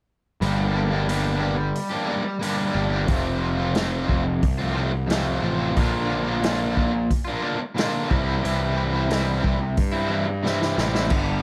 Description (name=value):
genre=classic rock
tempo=90 BPM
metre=4/4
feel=straight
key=G dorian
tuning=A4 = 441 Hz
part: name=crunchy overdriven guitar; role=riff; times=0.4-11.4 s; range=F2 to G4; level=-29 LUFS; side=equal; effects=harmonic tremolo
part: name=crunchy overdriven guitar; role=riff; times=0.4-11.4 s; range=F2 to G4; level=-30 LUFS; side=equal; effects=none
part: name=fuzz picked electric bass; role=bass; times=0.4-11.4 s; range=F1 to G2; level=-28 LUFS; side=equal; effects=overdrive
part: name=vintage drum kit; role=drums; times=0.4-11.3 s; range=crash cymbal, hi-hat, kick drum, snare drum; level=-28 LUFS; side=equal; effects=none
room=light reverb, small room ambience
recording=none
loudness=-23 LUFS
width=mono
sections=0.4-11.1 A section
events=drum fill 10.4-11.1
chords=0.4 Gm; 3.1 F; 5.8 Bb; 8.1 C